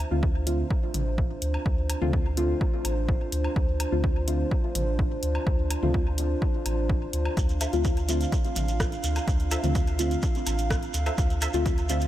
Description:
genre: dub techno.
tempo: 126 BPM.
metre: 4/4.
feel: straight.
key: D minor.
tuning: A4 = 440 Hz.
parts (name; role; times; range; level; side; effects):
dark analog pad; sustained chords; 0.0-12.1 s; D4 to F5; -33 LUFS; right 1 dB; chorus, sidechain pumping.
soft dub sub bass; bass; 0.0-12.1 s; A1 to D2; -28 LUFS; equal; sidechain pumping.
deep mellow chord stab; stabs; 0.1-12.1 s; D3 to F4; -32 LUFS; left 1 dB; chorus, phaser, sidechain pumping, dub echo.
electronic kick drum; drums; 0.2-11.8 s; none; -26 LUFS; equal; overdrive.
punchy analog drum machine; drums; 0.5-12.1 s; hi-hat, rim click; -35 LUFS; left 1 dB; overdrive.
electronic toms and woodblock; percussion; 0.9-11.5 s; none; -39 LUFS; left 2 dB; overdrive, sidechain pumping on perc, sidechain pumping on toms, dub echo.
shekere; percussion; 7.4-12.1 s; none; -38 LUFS; right 3 dB; none.
filtered dub chord stab; riff; 7.6-11.5 s; F4 to E5; -38 LUFS; right 1 dB; phaser, sidechain pumping, dub echo.
room: light reverb.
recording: none.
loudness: -24 LUFS.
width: side -13 dB against mid.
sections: 0.0-12.1 A section.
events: none.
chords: 0.0 Dm7.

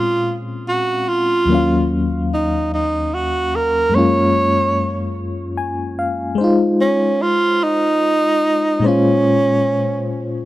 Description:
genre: R&B.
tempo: 49 BPM (dotted quarters).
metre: 6/8.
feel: straight.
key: Bb minor.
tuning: A4 = 438 Hz.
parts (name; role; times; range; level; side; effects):
breathy tenor saxophone; melody; 0.0-10.5 s; Db4 to Db5; -17 LUFS; right 2 dB; none.
FM electric piano with tremolo; accompaniment; 0.0-10.5 s; Eb2 to Ab5; -18 LUFS; left 2 dB; none.
room: studio ambience.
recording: dry, close 1970s-style studio recording.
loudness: -15 LUFS.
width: side -15 dB against mid.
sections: 0.0-10.5 A section.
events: FM electric piano fill 5.2-6.4.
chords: 0.0 Bbm9; 1.5 Ebm9; 3.9 Gbmaj9; 6.4 Fm7/Ab; 8.8 Bbm9.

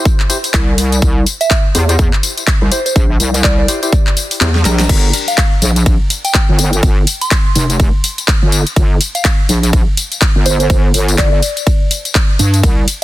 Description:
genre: bass house.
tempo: 124 BPM.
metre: 4/4.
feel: swing 59% on 16ths.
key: G dorian.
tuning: A4 = 440 Hz.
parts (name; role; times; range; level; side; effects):
percussive organ stab; stabs; 0.0-5.1 s; D4 to C5; -23 LUFS; left 2 dB; lush chorus, sidechain pumping, ping-pong delay.
big-room dance drum kit; drums; 0.1-13.0 s; crash cymbal, handclaps, hi-hat, ride cymbal, snare drum, tambourine; -17 LUFS; left 2 dB; overdrive.
electronic kick drum; drums; 0.1-12.7 s; none; -12 LUFS; equal; overdrive.
wobble bass; bass; 0.5-12.9 s; F1 to G2; -13 LUFS; equal; chorus, overdrive, sidechain pumping.
soft synth bell; melody; 1.4-11.4 s; C5 to C6; -21 LUFS; right 2 dB; chorus, phaser, ping-pong delay.
room: digital ambience.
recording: dense, heavily limited modern master.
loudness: -10 LUFS.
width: side -16 dB against mid.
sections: 0.0-4.9 A section; 4.9-13.0 A section.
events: drop 0.0-4.9, 4.9-13.0; kick drops out 4.4-4.9; drum fill 4.4-4.9.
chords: 0.0 C; 4.9 Gm.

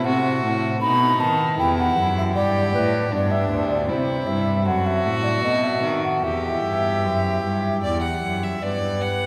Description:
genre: classical, baroque-style sonata movement with continuo.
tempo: 77 BPM.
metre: 3/4.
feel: uneven beats.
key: E minor.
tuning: A4 = 443 Hz.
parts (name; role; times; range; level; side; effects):
rich violin; melody; 0.0-9.3 s; D4 to F#5; -29 LUFS; equal; none.
baroque flute; second line; 0.0-9.3 s; B4 to B5; -26 LUFS; equal; none.
pipe organ, principal; accompaniment; 0.0-9.3 s; D2 to A4; -30 LUFS; equal; none.
rich cello; bass; 0.0-9.3 s; D2 to D#3; -27 LUFS; equal; none.
room: wet cathedral reverb, RT60 4.6 s.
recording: recorded in a church or concert hall.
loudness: -22 LUFS.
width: mono.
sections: 0.0-8.6 A section.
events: none.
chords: 0.0 F#m7b5; 0.8 B7; 1.6 Em; 3.1 G; 3.9 C; 4.7 F#m7b5; 5.4 B7; 6.2 Em; 8.6 G.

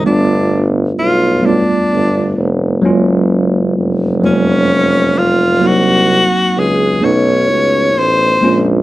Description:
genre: slow six-eight R&B.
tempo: 43 BPM (dotted quarters).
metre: 6/8.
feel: straight.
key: unclear.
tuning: A4 = 440 Hz.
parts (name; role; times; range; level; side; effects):
breathy tenor saxophone; melody; 0.0-8.6 s; Db4 to Db5; -14 LUFS; equal; slapback echo.
mellow tine electric piano; accompaniment; 0.0-8.8 s; Gb3 to Gb4; -14 LUFS; right 1 dB; medium stereo tremolo.
warm tuba; bass; 0.1-8.8 s; F1 to Db2; -16 LUFS; equal; none.
room: light reverb.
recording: dark, warm production.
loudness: -10 LUFS.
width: side -16 dB against mid.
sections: 0.0-8.8 A section.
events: none.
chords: 0.0 G9; 2.8 Gbmaj7; 5.6 Cm7b5; 7.0 Cb9.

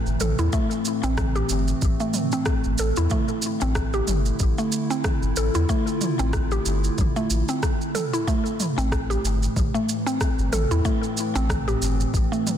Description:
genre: organic downtempo.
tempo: 93 BPM.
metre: 4/4.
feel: swing 56% on 16ths.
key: A minor.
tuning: A4 = 440 Hz.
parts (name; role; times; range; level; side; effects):
warbly tape-like pad; sustained chords; 0.0-12.6 s; A2 to F4; -29 LUFS; right 2 dB; chorus, built-in reverb, sidechain pumping.
mallet-like synth pluck; arpeggios; 0.0-12.6 s; A3 to A4; -26 LUFS; left 1 dB; chorus, ping-pong delay.
warm sub bass; bass; 0.1-12.3 s; G1 to E2; -24 LUFS; equal; sidechain pumping.
deep house drum kit; drums; 0.1-12.6 s; rim click, shaker, toms; -30 LUFS; right 2 dB; overdrive.
electronic kick drum; drums; 0.5-12.3 s; none; -25 LUFS; equal; overdrive.
room: light reverb, digital ambience.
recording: dense, heavily limited modern master.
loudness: -21 LUFS.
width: side -10 dB against mid.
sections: 0.0-12.6 A section.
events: none.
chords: 0.0 Am; 3.1 Dmadd9; 8.3 Am.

